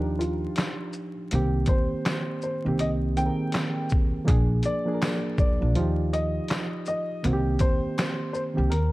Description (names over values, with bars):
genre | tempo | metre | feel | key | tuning
lo-fi hip hop | 81 BPM | 4/4 | swing 60% on 16ths | unclear | A4 = 440 Hz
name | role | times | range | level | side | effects
reed electric piano | accompaniment | 0.0-8.7 s | Eb3 to Bb4 | -28 LUFS | right 1 dB | cassette tape, low-pass filter
upright bass | bass | 0.0-8.9 s | Bb1 to Eb2 | -26 LUFS | equal | none
dark upright piano | melody | 0.2-8.9 s | F4 to G5 | -32 LUFS | left 1 dB | low-pass filter
trip hop sampler-style drum kit | drums | 0.2-8.9 s | handclaps, hi-hat, kick drum, shaker, snare drum | -26 LUFS | equal | none
tambourine | percussion | 0.6-8.2 s | none | -48 LUFS | left 6 dB | none
room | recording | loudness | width
light reverb, small room ambience | dark, warm production, vinyl crackle | -23 LUFS | side -19 dB against mid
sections
0.0-8.9 A section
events
drum fill 8.7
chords
0.0 Ebmaj9; 1.3 Cm7; 4.3 Bb7; 5.8 Ebadd9; 7.2 Cm7